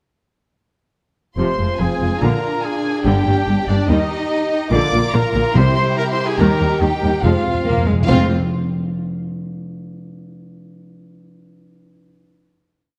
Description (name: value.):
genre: cinematic, heroic adventure film score.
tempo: 143 BPM.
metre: 4/4.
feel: straight.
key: F dorian.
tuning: A4 = 440 Hz.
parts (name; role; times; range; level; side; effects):
rich symphonic violin section; melody; 1.4-8.3 s; D5 to D6; -27 LUFS; equal; none.
warm symphonic violin section; second line; 1.4-8.3 s; C4 to Bb4; -25 LUFS; equal; none.
rich symphonic viola section; accompaniment; 1.4-8.3 s; C3 to C4; -24 LUFS; equal; none.
bright trumpet; stabs; 1.4-8.3 s; D4 to D5; -26 LUFS; equal; none.
rich symphonic cello section; bass; 1.4-8.3 s; Eb2 to Bb3; -23 LUFS; equal; none.
rich symphonic double bass section; bass; 1.4-8.3 s; F1 to Eb2; -24 LUFS; equal; none.
timpani; percussion; 5.5-8.3 s; F2 to C3; -24 LUFS; equal; none.
room: moderate scoring stage reverb, RT60 1.8 s.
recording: none.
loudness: -18 LUFS.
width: mono.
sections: 1.4-8.1 theme; 8.1-9.8 final chord.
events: timpani fill 7.2-8.1.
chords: 1.4 Fm; 2.2 Bb; 3.1 Gm; 3.9 Eb; 4.7 Bb; 5.6 C; 6.4 Eb; 7.2 Fm.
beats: | 1.38 1.80 2.22 2.64 | 3.06 3.47 3.89 4.30 | 4.72 5.14 5.55 5.97 | 6.39 6.81 7.24 7.66 | 8.09.